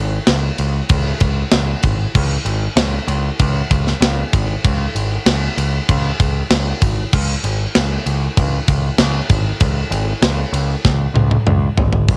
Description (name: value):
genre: heavy metal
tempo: 97 BPM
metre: 4/4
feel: straight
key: unclear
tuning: A4 = 440 Hz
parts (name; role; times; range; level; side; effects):
- growling picked electric bass; bass; 0.0-12.2 s; G#1 to C#2; -21 LUFS; equal; overdrive
- tight metal drum kit; drums; 0.3-12.2 s; crash cymbal, hi-hat, kick drum, ride cymbal, snare drum, toms; -19 LUFS; equal; none
room: little or no reverb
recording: home recording on cassette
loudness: -17 LUFS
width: mono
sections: 0.0-12.1 A section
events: drum fill 10.8-12.1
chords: none